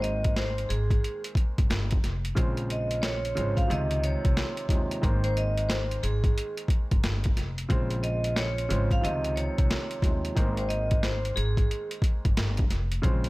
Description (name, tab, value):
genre	hip hop, boom-bap hip-hop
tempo	90 BPM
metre	4/4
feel	swing 62% on 16ths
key	unclear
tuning	A4 = 440 Hz
part	vibraphone with hard mallets	melody	0.0-11.9 s	Ab4 to F5	-32 LUFS	right 1 dB	high-pass filter, low-pass filter, slapback echo
part	warm upright piano	accompaniment	0.0-13.3 s	C3 to C4	-34 LUFS	equal	cassette tape, high-pass filter, low-pass filter
part	upright bass	bass	0.0-13.3 s	F1 to Eb2	-29 LUFS	equal	none
part	boom bap sampler-style drum kit	drums	0.0-13.3 s	hi-hat, kick drum, snare drum	-27 LUFS	equal	overdrive
room	small room ambience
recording	none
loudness	-24 LUFS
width	side -21 dB against mid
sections	0.0-13.3 A section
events	none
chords	0.0 Abmaj7; 2.4 Bbm7; 3.7 Dbmaj7; 5.0 Abmaj7; 7.7 Bbm7; 9.0 Dbmaj7; 10.4 Abmaj7